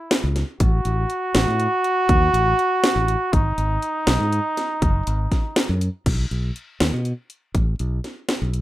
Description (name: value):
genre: progressive instrumental, band music in an uneven meter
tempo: 242 BPM (eighths)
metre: 11/8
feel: straight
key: unclear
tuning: A4 = 439 Hz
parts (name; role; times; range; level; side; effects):
- clear flugelhorn; second line; 0.0-5.8 s; D#4 to F#4; -21 LUFS; right 1 dB; none
- house drum kit; drums; 0.1-8.6 s; crash cymbal, hi-hat, kick drum, snare drum; -21 LUFS; equal; none
- modern bright fingered electric bass; bass; 0.2-8.6 s; F#1 to B2; -22 LUFS; equal; none
room: light reverb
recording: rough home demo mix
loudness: -19 LUFS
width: side -15 dB against mid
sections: 0.0-6.1 A section; 6.1-8.6 B section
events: none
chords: 0.0 A (rootless); 0.6 F#m/A; 3.3 G#5; 6.1 N.C.